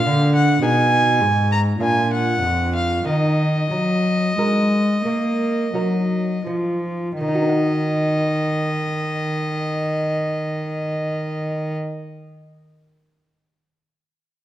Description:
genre	classical, baroque-style sonata movement with continuo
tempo	40-54 BPM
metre	3/4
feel	straight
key	Eb minor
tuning	A4 = 437 Hz
part	rich violin	melody	0.0-11.7 s	Eb5 to Bb5	-23 LUFS	equal	none
part	lute	accompaniment	0.0-12.0 s	F2 to Gb5	-25 LUFS	right 1 dB	none
part	rich cello	bass	0.0-11.7 s	F2 to Bb3	-20 LUFS	equal	none
room	moderate recital hall reverb, RT60 1.6 s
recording	none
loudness	-18 LUFS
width	side -12 dB against mid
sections	0.0-7.2 A section; 7.2-11.7 B section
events	slowing down 0.0-7.2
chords	0.0 Bb; 0.6 Abm/Cb; 1.8 Bb; 3.1 Ebm

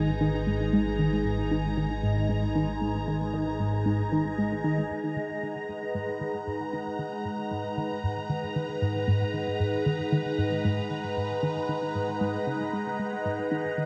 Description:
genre	ambient, sequencer-driven space music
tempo	115 BPM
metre	4/4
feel	straight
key	G# minor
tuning	A4 = 442 Hz
part	phased analog pad	sustained chords	0.0-13.9 s	G#3 to A#5	-32 LUFS	equal	phaser, chorus, shimmer reverb
part	tight sequenced synth	riff	0.0-13.9 s	G#2 to G#3	-31 LUFS	equal	chorus, phaser, cassette tape, delay
part	fat analog bass	bass	0.0-4.9 s	G#1	-37 LUFS	equal	tube saturation
part	wind-like tuned noise texture	texture	0.0-13.9 s	F#5 to G#5	-44 LUFS	equal	built-in reverb, shimmer reverb
room	wet lush hall reverb, RT60 3.0 s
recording	dark, warm production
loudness	-29 LUFS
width	mono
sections	0.0-4.9 A section; 4.9-13.9 B section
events	none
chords	0.0 G#madd9

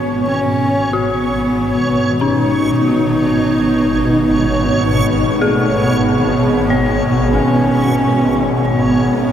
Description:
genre	dark ambient drone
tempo	47 BPM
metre	4/4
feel	straight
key	unclear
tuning	A4 = 441 Hz
part	dark horsehead fiddle	melody	0.0-9.3 s	A3 to D#4	-17 LUFS	equal	diffuse ambient delay
part	dark analog pad	sustained chords	0.3-9.3 s	B3 to F#5	-22 LUFS	right 3 dB	chorus
part	swarming drone	drone	0.0-9.3 s	G#1 to B2	-17 LUFS	equal	built-in reverb
part	backwards swelling texture	texture	0.0-9.3 s	C#5	-22 LUFS	right 1 dB	built-in reverb
part	dark detuned synth bell	arpeggios	0.9-9.3 s	C#4 to C#5	-22 LUFS	left 4 dB	chorus, diffuse ambient delay
room	wet huge ambient reverb, RT60 8.8 s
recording	none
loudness	-12 LUFS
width	side -9 dB against mid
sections	0.0-9.3 A section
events	fade-in on analog synth pad 0.0-9.3; fade-out on synth texture 0.0-9.3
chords	0.0 G#m7

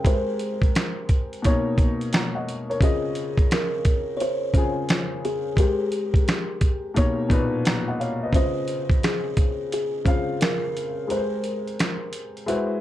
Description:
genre	lo-fi hip hop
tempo	87 BPM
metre	4/4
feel	swing 66% on 16ths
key	Db lydian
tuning	A4 = 441 Hz
part	buzzing kalimba	melody	0.0-12.4 s	G4 to Db5	-28 LUFS	equal	tape echo
part	dark upright piano	accompaniment	0.0-12.8 s	Bb2 to Bb5	-27 LUFS	left 2 dB	cassette tape
part	dusty soul sampler-style drum kit	drums	0.0-12.7 s	finger snaps, hi-hat, kick drum, snare drum	-21 LUFS	equal	none
room	light reverb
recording	cassette tape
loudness	-21 LUFS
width	side -13 dB against mid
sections	0.0-12.8 A section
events	break 11.1-12.8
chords	0.1 Abmaj9; 1.4 Cbmaj9; 2.8 Dbmaj9; 5.6 Abmaj9; 6.9 Cbmaj9; 8.3 Dbmaj9; 11.1 Abmaj9

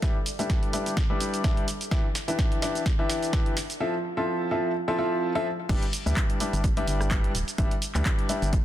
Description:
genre	piano house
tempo	127 BPM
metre	4/4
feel	swing 55% on 16ths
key	G mixolydian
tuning	A4 = 440 Hz
part	clear grand piano	riff	0.0-8.5 s	E3 to E5	-28 LUFS	left 1 dB	sidechain pumping, low-pass filter, ping-pong delay
part	organ-like FM bass	bass	0.0-8.6 s	D1 to D2	-29 LUFS	equal	sidechain pumping, high-pass filter
part	electronic kick drum	drums	0.0-8.6 s	none	-26 LUFS	equal	studio reverb
part	punchy analog drum machine	drums	0.0-8.6 s	crash cymbal, handclaps, hi-hat, rim click, shaker, snare drum	-33 LUFS	right 1 dB	soft clipping on snare, high-pass filter on snare, studio reverb, high-pass filter on hats, high-pass filter on perc, high-pass filter on cymbals
part	warbly tape-like pad	texture	0.0-3.8 s	A4 to E5	-46 LUFS	left 2 dB	none
room	light reverb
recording	dense, heavily limited modern master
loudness	-24 LUFS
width	side -12 dB against mid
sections	0.0-5.7 A section; 5.7-8.6 B section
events	build-up 0.0-5.7; drum fill 0.0-3.8; drop 5.7-8.6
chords	0.0 G6; 1.9 Em7; 3.8 Fmaj7; 5.7 G6

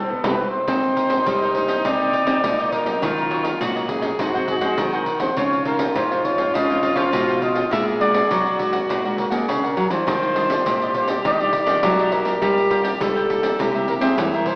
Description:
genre	samba and choro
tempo	102 BPM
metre	4/4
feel	straight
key	C minor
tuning	A4 = 444 Hz
part	breathy trumpet	melody	0.0-14.6 s	Ab4 to E5	-22 LUFS	equal	none
part	breathy tenor saxophone	second line	0.0-14.5 s	B3 to A4	-25 LUFS	equal	none
part	nylon-string guitar	accompaniment	0.2-14.6 s	G2 to A4	-31 LUFS	equal	none
part	nylon-string guitar	bass	0.2-14.6 s	Ab2 to C4	-24 LUFS	equal	none
part	pandeiro	percussion	0.2-14.6 s	none	-26 LUFS	equal	none
part	cavaquinho	accompaniment	0.3-14.6 s	D4 to G5	-29 LUFS	equal	none
room	wet concert hall reverb, RT60 1.9 s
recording	recorded in a church or concert hall, AM radio sound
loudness	-17 LUFS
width	side -33 dB against mid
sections	0.7-14.6 A section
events	band accent 0.0-0.7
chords	0.0 Cmaj7(no3); 0.7 Cm9; 3.0 Ebm9; 4.2 Ab7; 5.4 Dbmaj9; 7.7 Bb7b13; 10.1 Ebmaj9; 12.4 Gm9; 13.6 C7

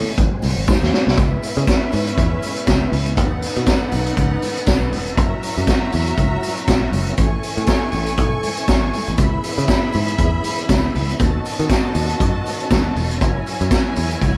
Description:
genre	disco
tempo	120 BPM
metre	4/4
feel	swing 56% on 16ths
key	C# minor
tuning	A4 = 440 Hz
part	overdriven tonewheel organ	sustained chords	0.0-14.4 s	C#3 to A#4	-31 LUFS	equal	chorus vibrato, fast rotary speaker
part	picked electric bass	bass	0.0-14.4 s	E1 to D#3	-23 LUFS	equal	none
part	vintage drum kit	drums	0.2-14.3 s	hi-hat, kick drum, snare drum	-21 LUFS	equal	none
part	congas	percussion	0.2-14.3 s	none	-33 LUFS	equal	none
part	tambourine	percussion	0.4-14.4 s	none	-45 LUFS	equal	none
part	warm studio string section	second line	1.2-14.4 s	C#4 to C#6	-28 LUFS	equal	none
room	light reverb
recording	band playing live in one room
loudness	-19 LUFS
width	mono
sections	0.0-1.2 A section; 1.2-14.4 B section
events	drum fill 0.7-1.2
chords	0.2 G#7; 1.2 C#m7; 3.2 B7; 5.2 F#7; 7.2 Amaj7; 9.2 C#m7; 11.2 B7/D#; 13.2 F#7

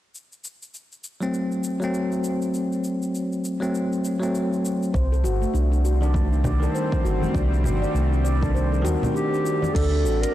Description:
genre	organic downtempo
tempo	100 BPM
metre	4/4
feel	swing 59% on 16ths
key	unclear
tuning	A4 = 441 Hz
part	deep house drum kit	drums	0.1-10.3 s	crash cymbal, hi-hat, shaker	-39 LUFS	left 1 dB	overdrive
part	bell-like tine electric piano	accompaniment	1.2-9.7 s	Eb3 to D4	-26 LUFS	left 1 dB	fast stereo tremolo, vintage 12-bit sampler grit, sidechain pumping, tape echo
part	bowed-like drone	sustained chords	5.7-10.3 s	G3 to C5	-32 LUFS	left 1 dB	built-in reverb, sidechain pumping
part	handpan	arpeggios	4.9-10.3 s	A3 to D5	-27 LUFS	left 1 dB	low-pass filter, tape echo
part	smooth synth bass	bass	4.9-10.3 s	G1 to Eb2	-22 LUFS	equal	transformer saturation
part	electronic kick drum	drums	4.9-9.9 s	none	-26 LUFS	equal	overdrive
part	congas	percussion	5.2-9.7 s	none	-30 LUFS	left 1 dB	none
part	mellow clarinet	melody	9.2-10.3 s	G4 to Bb4	-25 LUFS	right 3 dB	none
room	light reverb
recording	blown-out, overdriven recording, overdrive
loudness	-21 LUFS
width	side -13 dB against mid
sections	0.1-9.7 A section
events	none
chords	0.1 F#dim; 4.9 Cm; 9.7 D7

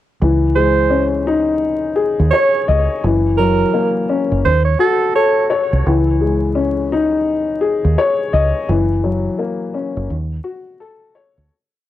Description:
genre	hip hop, boom-bap hip-hop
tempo	85 BPM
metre	4/4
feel	swing 62% on 16ths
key	C# harmonic minor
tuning	A4 = 440 Hz
part	dark upright piano	accompaniment	0.2-11.5 s	E3 to D#5	-16 LUFS	left 4 dB	high-pass filter, low-pass filter, cassette tape
part	deep dub fingered electric bass	bass	0.2-11.5 s	F#1 to D#2	-17 LUFS	equal	none
part	breathy tenor saxophone	melody	0.6-5.5 s	A4 to C#5	-18 LUFS	right 6 dB	high-pass filter, low-pass filter, cassette tape, analog delay
room	light reverb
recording	home recording on cassette, vinyl crackle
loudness	-14 LUFS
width	side -13 dB against mid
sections	0.2-11.5 hook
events	fade-out 8.7-11.5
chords	0.2 C#madd9; 3.0 F#7; 4.4 D#m7b5; 5.9 C#madd9; 8.7 F#7; 10.1 D#m7b5

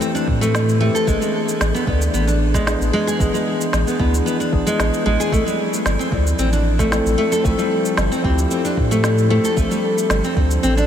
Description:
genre	organic downtempo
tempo	113 BPM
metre	4/4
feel	straight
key	unclear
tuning	A4 = 440 Hz
part	mellow tine electric piano	accompaniment	0.0-10.9 s	E3 to D5	-22 LUFS	left 3 dB	medium stereo tremolo, sidechain pumping, low-pass filter, diffuse ambient delay
part	nylon-string guitar	arpeggios	0.0-10.9 s	G3 to A4	-20 LUFS	right 1 dB	diffuse ambient delay
part	electronic shaker and snare drum	drums	0.0-10.9 s	none	-26 LUFS	right 1 dB	none
part	warm sub bass	bass	0.3-10.9 s	G1 to A2	-20 LUFS	equal	sidechain pumping
part	electronic kick drum	drums	0.3-10.5 s	none	-21 LUFS	equal	none
room	moderate huge ambient reverb, RT60 7.5 s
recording	dreamy mix soaked in reverb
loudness	-16 LUFS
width	side -9 dB against mid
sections	0.0-10.9 A section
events	filter sweep on tine electric piano 0.0-10.9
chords	0.0 Am7; 1.1 E7/A; 5.3 Fmaj7; 9.6 Dm7

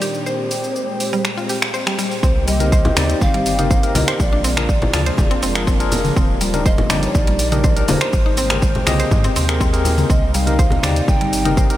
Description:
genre	afro house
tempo	122 BPM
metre	4/4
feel	straight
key	C minor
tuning	A4 = 440 Hz
part	mellow hollow polished pan flute	melody	0.0-11.8 s	C5 to G5	-25 LUFS	right 1 dB	tape echo
part	warm analog pad	sustained chords	0.0-11.8 s	Bb2 to G5	-26 LUFS	equal	chorus, sidechain pumping
part	mallet-like synth pluck	arpeggios	0.0-11.7 s	G3 to C5	-25 LUFS	equal	chorus, sidechain pumping, tape echo
part	house drum kit	drums	0.0-11.8 s	finger snaps, hi-hat, shaker, toms	-23 LUFS	equal	overdrive
part	warm sub bass	bass	2.2-11.8 s	Eb1 to Ab2	-22 LUFS	equal	sidechain pumping
part	electronic kick drum	drums	2.2-11.7 s	none	-17 LUFS	equal	overdrive
part	barky tine electric piano	stabs	2.6-11.8 s	C4 to Eb5	-24 LUFS	left 3 dB	fast stereo tremolo, vintage 12-bit sampler grit, sidechain pumping, tape echo
part	congas	percussion	2.6-11.2 s	none	-25 LUFS	left 2 dB	none
room	light reverb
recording	none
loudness	-14 LUFS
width	side -14 dB against mid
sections	0.0-2.2 A section; 2.2-11.8 B section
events	filter sweep on analog synth pad 0.0-2.2; drop 2.2-11.8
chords	0.3 Abmaj9; 2.2 Cm7; 4.2 Bb7; 6.2 Ebmaj7; 8.1 Abmaj9; 10.1 Cm7

